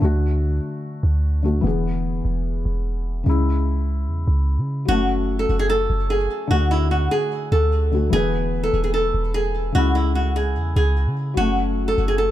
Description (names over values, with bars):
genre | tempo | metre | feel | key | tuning
hip hop, trap | 148 BPM | 4/4 | half-time | F# minor | A4 = 440 Hz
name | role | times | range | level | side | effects
felt-muted upright piano | accompaniment | 0.0-12.3 s | C#3 to B4 | -25 LUFS | left 4 dB | none
warm 808-style bass | bass | 0.0-12.3 s | E1 to C#3 | -20 LUFS | equal | none
flamenco guitar | melody | 4.9-12.3 s | E4 to A4 | -22 LUFS | right 1 dB | digital delay
room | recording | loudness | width
studio reverb | dark, warm production | -18 LUFS | side -13 dB against mid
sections
0.0-4.9 A section; 4.9-12.3 B section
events
none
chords
0.0 D; 1.6 E; 3.3 C#m; 4.9 F#m; 6.5 D; 8.1 E; 9.7 C#m; 11.4 F#m